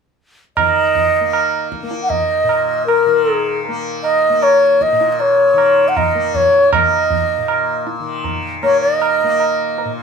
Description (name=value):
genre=indian classical, Hindustani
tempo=78 BPM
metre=4/4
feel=straight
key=unclear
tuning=A4 = 440 Hz
part: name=breathy reedy bansuri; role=melody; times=0.6-9.9 s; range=Bb4 to Gb5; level=-13 LUFS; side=equal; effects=none
part: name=tanpura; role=drone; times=0.6-10.0 s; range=Bb2 to Bb3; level=-24 LUFS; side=left 3 dB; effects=none
part: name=tabla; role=percussion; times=0.6-10.0 s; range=none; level=-20 LUFS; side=right 4 dB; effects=none
room=moderate studio ambience, RT60 0.5 s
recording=band playing live in one room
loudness=-13 LUFS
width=side -6 dB against mid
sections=0.6-10.0 A section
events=none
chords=none